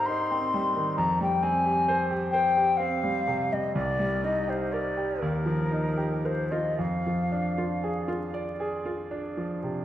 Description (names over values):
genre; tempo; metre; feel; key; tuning
classical, impressionist duo for flute and grand piano; 37-45 BPM (dotted quarters); 6/8; rubato; F dorian; A4 = 440 Hz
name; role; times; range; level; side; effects
mellow hollow silver concert flute; melody; 0.0-8.3 s; Bb4 to C6; -27 LUFS; left 2 dB; none
clear concert grand piano; accompaniment; 0.0-9.8 s; C2 to D5; -28 LUFS; right 1 dB; none
room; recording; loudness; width
wet recital hall reverb, RT60 1.5 s; vinyl crackle; -25 LUFS; side -12 dB against mid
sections
0.0-9.8 A section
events
none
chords
0.0 Abmaj9; 1.0 Fmadd9; 3.8 Cm7; 5.2 Ebadd9; 6.8 Fm6